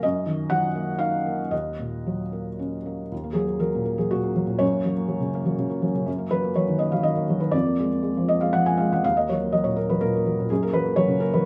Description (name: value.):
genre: neoclassical minimalist piano.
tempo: 112-126 BPM.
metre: 3/4.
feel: rubato.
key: Eb minor.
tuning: A4 = 439 Hz.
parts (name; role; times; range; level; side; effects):
felt-muted upright piano; solo; 0.0-11.5 s; Eb2 to Ab5; -24 LUFS; equal; none.
room: moderate studio reverb, RT60 0.6 s.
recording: none.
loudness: -24 LUFS.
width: mono.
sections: 0.0-3.1 A section; 3.1-11.5 B section.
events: none.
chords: 0.0 Ebm/Gb; 1.5 Ebm7; 3.1 Ebm; 4.6 Gb; 6.1 Ebm/Gb; 7.5 Bb7/F; 9.0 Ebm; 10.5 Gb.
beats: | 0.03 0.51 1.00 | 1.52 2.05 2.59 | 3.11 3.61 4.11 | 4.61 5.11 5.59 | 6.07 6.55 7.04 | 7.53 8.04 8.54 | 9.04 9.54 10.02 | 10.50 10.98.